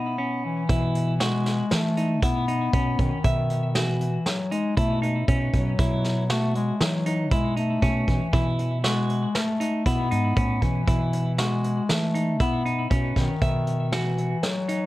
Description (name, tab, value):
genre	progressive instrumental, band music in an uneven meter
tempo	118 BPM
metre	5/4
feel	straight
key	B mixolydian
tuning	A4 = 440 Hz
part	warm bass clarinet	melody	0.0-14.9 s	D#3 to B3	-26 LUFS	left 2 dB	digital delay
part	clean electric guitar	arpeggios	0.0-14.9 s	C#4 to E5	-30 LUFS	right 1 dB	digital delay
part	mellow fretless electric bass	bass	0.0-14.3 s	G#2 to E3	-26 LUFS	right 1 dB	analog chorus
part	vintage brush drum kit	drums	0.7-14.8 s	hi-hat, kick drum, snare drum	-26 LUFS	right 1 dB	none
room	light reverb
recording	none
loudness	-21 LUFS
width	side -17 dB against mid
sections	0.7-14.9 A section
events	none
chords	0.0 Bsus4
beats	0.19 | 0.70 1.21 1.72 2.23 2.74 | 3.25 3.76 4.26 4.77 5.28 | 5.79 6.30 6.81 7.32 7.83 | 8.34 8.84 9.35 9.86 10.37 | 10.88 11.38 11.89 12.40 12.91 | 13.42 13.93 14.43